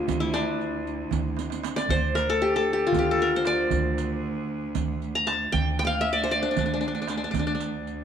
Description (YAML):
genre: Turkish makam ensemble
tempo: 232 BPM (eighths)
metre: 7/8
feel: straight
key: D makam ussak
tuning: A4 = 443 Hz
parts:
  - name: qanun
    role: melody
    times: 0.0-8.0 s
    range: D4 to Bb5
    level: -25 LUFS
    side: left 2 dB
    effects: none
  - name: bright cello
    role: drone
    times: 0.0-8.0 s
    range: D2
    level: -33 LUFS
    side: right 2 dB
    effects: stereo widening
  - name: upright bass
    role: bass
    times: 0.1-8.0 s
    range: D2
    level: -32 LUFS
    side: right 1 dB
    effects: none
  - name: darbuka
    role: percussion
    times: 0.1-7.5 s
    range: none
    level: -33 LUFS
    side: right 14 dB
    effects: none
  - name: riq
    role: percussion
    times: 0.1-7.9 s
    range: none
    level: -37 LUFS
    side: right 11 dB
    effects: none
room: moderate echo chamber reverb, RT60 1.2 s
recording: 1960s-style stereo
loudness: -23 LUFS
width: side -8 dB against mid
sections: 0.0-8.0 A section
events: drum fill 1.4-1.9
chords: none